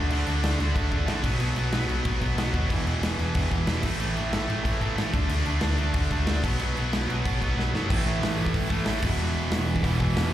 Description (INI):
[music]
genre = punk rock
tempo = 185 BPM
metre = 4/4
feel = straight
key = unclear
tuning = A4 = 440 Hz
[part]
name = sludgy distorted guitar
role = riff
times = 0.0-10.3 s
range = E2 to D4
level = -33 LUFS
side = equal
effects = overdrive, slapback echo
[part]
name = tight distorted guitar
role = riff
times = 0.0-10.3 s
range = E2 to D4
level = -33 LUFS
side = left 9 dB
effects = distortion, slapback echo
[part]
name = tight distorted guitar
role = riff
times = 0.0-10.3 s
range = E2 to D4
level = -30 LUFS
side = right 8 dB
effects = distortion
[part]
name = overdriven picked electric bass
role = bass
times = 0.0-10.3 s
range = E1 to A2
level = -27 LUFS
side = equal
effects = none
[part]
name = big rock drum kit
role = drums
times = 0.1-10.2 s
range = crash cymbal, hi-hat, kick drum, snare drum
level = -29 LUFS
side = equal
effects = none
[sound]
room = little or no reverb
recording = live gig heard through the venue's PA, club reverb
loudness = -23 LUFS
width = side -12 dB against mid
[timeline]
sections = 0.0-7.9 A section; 7.9-10.3 B section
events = drum fill 7.6-7.9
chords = 0.0 D5; 1.2 B5; 2.7 E5; 3.8 A5; 5.1 D5; 6.4 B5; 7.9 A5; 9.0 E5